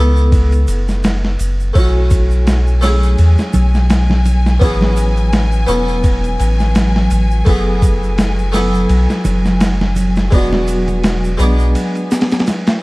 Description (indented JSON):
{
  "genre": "trip hop",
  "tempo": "84 BPM",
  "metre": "4/4",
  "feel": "swing 56% on 16ths",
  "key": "F# minor",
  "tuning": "A4 = 437 Hz",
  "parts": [
    { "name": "harpsichord", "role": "accompaniment", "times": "0.0-12.8 s", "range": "G#3 to A4", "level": "-20 LUFS", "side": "equal", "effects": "harmonic tremolo, tape echo" },
    { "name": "soft dub sub bass", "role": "bass", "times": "0.0-11.8 s", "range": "E1 to E2", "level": "-14 LUFS", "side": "equal", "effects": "none" },
    { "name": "tube shaker and congas", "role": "percussion", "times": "0.2-12.8 s", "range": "none", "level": "-23 LUFS", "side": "right 2 dB", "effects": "none" },
    { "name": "dusty soul sampler-style drum kit", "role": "drums", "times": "0.3-12.8 s", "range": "hi-hat, kick drum, ride cymbal, snare drum", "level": "-16 LUFS", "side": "equal", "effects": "overdrive, vintage 12-bit sampler grit" },
    { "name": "clear studio string section", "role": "sustained chords", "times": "1.7-12.8 s", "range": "F#3 to G#5", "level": "-22 LUFS", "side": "equal", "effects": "none" }
  ],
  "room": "small room ambience",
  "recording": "dark, warm production, vinyl crackle",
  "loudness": "-11 LUFS",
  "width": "side -22 dB against mid",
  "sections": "0.0-12.8 A section",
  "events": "none",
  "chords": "0.0 F#m11; 1.8 B9sus4; 4.6 Amaj9; 7.5 F#m11; 10.3 E9"
}